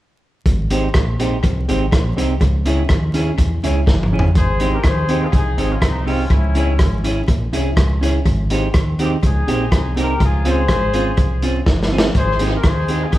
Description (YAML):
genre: ska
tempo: 123 BPM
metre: 4/4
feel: straight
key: Ab major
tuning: A4 = 439 Hz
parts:
  - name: fingered electric bass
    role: bass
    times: 0.5-13.2 s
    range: G1 to Fb2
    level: -19 LUFS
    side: equal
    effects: none
  - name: crunchy breakbeat drum kit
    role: drums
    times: 0.5-13.2 s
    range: hi-hat, kick drum, rim click, snare drum, toms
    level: -18 LUFS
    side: equal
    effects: tape echo
  - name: clean electric guitar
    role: accompaniment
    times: 0.7-13.1 s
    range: C4 to Ab4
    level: -23 LUFS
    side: right 4 dB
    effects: tape echo
  - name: dark upright piano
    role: stabs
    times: 0.7-13.0 s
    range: C4 to Db5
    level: -28 LUFS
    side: left 4 dB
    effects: none
  - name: clear horn section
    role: melody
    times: 4.4-13.2 s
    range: C4 to C5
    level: -23 LUFS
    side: left 3 dB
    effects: none
room: moderate large studio reverb, RT60 1.1 s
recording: band playing live in one room, vinyl crackle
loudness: -14 LUFS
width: side -15 dB against mid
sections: 0.5-4.4 A section; 4.4-13.2 B section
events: drum fill 3.9-4.4, 11.7-12.2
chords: 0.5 Abmaj7; 2.4 Dbm; 4.4 Abmaj7; 6.3 Dbm; 8.3 Abmaj7; 10.2 Dbmaj7; 12.2 Abmaj7